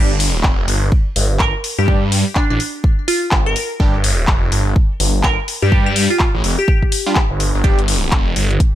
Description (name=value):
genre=bass house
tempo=125 BPM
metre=4/4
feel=swing 61% on 16ths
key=G minor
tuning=A4 = 440 Hz
part: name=band-passed chord stab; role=stabs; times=0.0-7.8 s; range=G3 to G4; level=-25 LUFS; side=right 2 dB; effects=phaser, sidechain pumping, ping-pong delay
part: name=phased detuned saw bass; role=bass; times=0.0-8.6 s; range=F1 to G2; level=-17 LUFS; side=equal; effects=phaser, tube saturation, sidechain pumping
part: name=house drum kit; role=drums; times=0.2-8.7 s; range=handclaps, hi-hat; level=-20 LUFS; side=left 2 dB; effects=none
part: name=electronic kick drum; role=drums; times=0.4-8.7 s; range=none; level=-15 LUFS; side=equal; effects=none
part: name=glassy wavetable pluck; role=melody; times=1.4-7.2 s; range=D4 to Bb4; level=-21 LUFS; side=left 1 dB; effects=chorus, ping-pong delay
room=little or no reverb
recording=none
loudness=-13 LUFS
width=side -12 dB against mid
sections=0.0-8.8 A section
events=none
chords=0.0 G5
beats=0.44 0.92 1.40 | 1.88 2.36 2.84 3.32 | 3.80 4.28 4.76 5.24 | 5.72 6.20 6.68 7.16 | 7.64 8.12 8.60